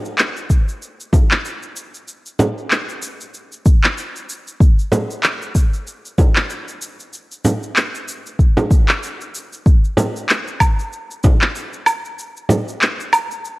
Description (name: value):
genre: downtempo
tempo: 95 BPM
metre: 4/4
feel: swing 57% on 16ths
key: none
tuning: none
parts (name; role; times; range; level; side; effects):
- electronic shaker, handclaps and woodblock; drums; 0.1-13.6 s; none; -19 LUFS; equal; overdrive
- electronic kick drum; drums; 0.5-11.4 s; none; -12 LUFS; equal; none
- frame drum; percussion; 1.1-12.6 s; none; -20 LUFS; right 1 dB; none
room: light reverb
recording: worn, warbling old tape, cassette tape, warbly pitch drift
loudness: -15 LUFS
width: side -21 dB against mid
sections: 0.0-13.6 A section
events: none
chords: none